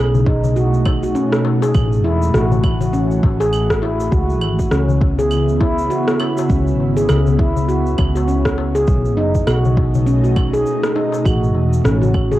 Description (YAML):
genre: organic downtempo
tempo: 101 BPM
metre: 4/4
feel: swing 59% on 16ths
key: C# minor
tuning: A4 = 440 Hz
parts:
  - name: ethereal airy pad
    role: sustained chords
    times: 0.0-12.4 s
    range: B2 to F#4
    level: -21 LUFS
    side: right 1 dB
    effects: ensemble chorus, built-in reverb, sidechain pumping, cassette tape
  - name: woody fretless electric bass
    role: bass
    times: 0.0-12.4 s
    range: E1 to C#2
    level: -18 LUFS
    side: equal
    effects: sidechain pumping
  - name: electronic shaker, claves and rim click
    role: drums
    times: 0.1-12.4 s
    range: none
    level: -24 LUFS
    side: right 1 dB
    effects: overdrive, cassette tape
  - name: darbuka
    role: percussion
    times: 0.1-12.4 s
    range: none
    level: -26 LUFS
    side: left 6 dB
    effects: none
  - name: handpan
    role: arpeggios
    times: 0.3-12.4 s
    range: C#4 to G#4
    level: -20 LUFS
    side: equal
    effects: low-pass filter, cassette tape, tape echo, shimmer reverb
  - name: electronic kick drum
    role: drums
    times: 0.3-12.3 s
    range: none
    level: -18 LUFS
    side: equal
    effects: overdrive, cassette tape
room: light reverb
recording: home recording on cassette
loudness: -14 LUFS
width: side -15 dB against mid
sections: 0.0-12.4 A section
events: none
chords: 0.0 B7; 1.7 F#m7; 4.1 C#m7; 8.9 B7; 11.3 F#m7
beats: 0.56 1.15 | 1.75 2.34 2.94 3.53 | 4.12 4.72 5.31 5.91 | 6.50 7.09 7.69 8.28 | 8.88 9.47 10.06 10.66 | 11.25 11.85